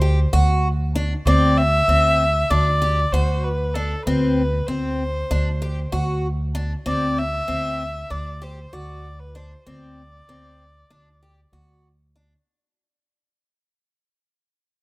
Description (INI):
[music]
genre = progressive instrumental, band music in an uneven meter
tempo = 193 BPM (eighths)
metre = 9/8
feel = straight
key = D mixolydian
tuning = A4 = 440 Hz
[part]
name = warm violin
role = melody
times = 0.0-11.8 s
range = A4 to E5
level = -22 LUFS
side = equal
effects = none
[part]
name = picked twelve-string acoustic guitar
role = arpeggios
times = 0.0-12.3 s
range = C4 to G4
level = -26 LUFS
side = left 1 dB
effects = none
[part]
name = upright bass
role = bass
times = 0.0-12.3 s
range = D2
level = -21 LUFS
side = equal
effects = none
[sound]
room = small room ambience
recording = rough home demo mix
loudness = -18 LUFS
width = side -22 dB against mid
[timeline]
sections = 0.0-12.5 A section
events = fade-out 0.0-12.5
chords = 0.0 D7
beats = 0.02 0.33 0.64 0.95 | 1.26 1.57 1.89 2.19 2.51 2.82 3.13 3.44 3.75 | 4.06 4.37 4.68 4.99 5.30 5.62 5.93 6.24 6.55 | 6.86 7.17 7.48 7.79 8.11 8.42 8.73 9.04 9.35 | 9.66 9.97 10.28 10.60 10.91 11.22 11.53 11.84 12.15